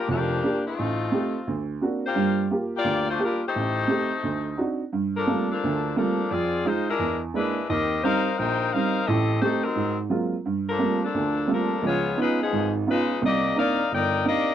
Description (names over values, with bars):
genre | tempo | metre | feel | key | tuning
jazz | 174 BPM | 4/4 | swing 63% on 8ths | G minor | A4 = 440 Hz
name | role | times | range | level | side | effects
bright saxophone section | melody | 0.0-14.5 s | F3 to G5 | -25 LUFS | left 4 dB | none
warm upright piano | accompaniment | 0.1-14.5 s | F1 to G4 | -25 LUFS | right 3 dB | none
room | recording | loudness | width
light reverb | dry, close 1970s-style studio recording | -22 LUFS | side -10 dB against mid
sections
0.0-4.9 A section; 4.9-14.5 B section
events
none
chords
0.0 Bb6; 0.8 Am7b5; 1.5 D7alt; 2.1 Gm7; 3.5 Am7b5; 4.2 D7b9; 4.9 Gm11; 6.3 Fm7; 7.0 E7#11; 7.7 Eb6; 9.1 Am7b5; 9.8 Ab13; 10.4 Gm11; 11.8 C#9; 13.2 Cm9